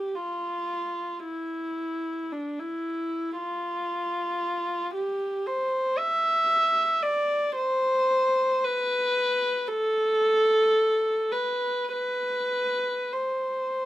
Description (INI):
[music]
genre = classical, free, expressive piece for unaccompanied viola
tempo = 48-58 BPM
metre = 4/4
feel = rubato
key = C major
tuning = A4 = 440 Hz
[part]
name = dark viola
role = solo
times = 0.0-13.9 s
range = D4 to E5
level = -24 LUFS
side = equal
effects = none
[sound]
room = little or no reverb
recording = close, detailed microphones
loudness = -24 LUFS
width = side -15 dB against mid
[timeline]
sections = 0.0-13.9 A section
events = none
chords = none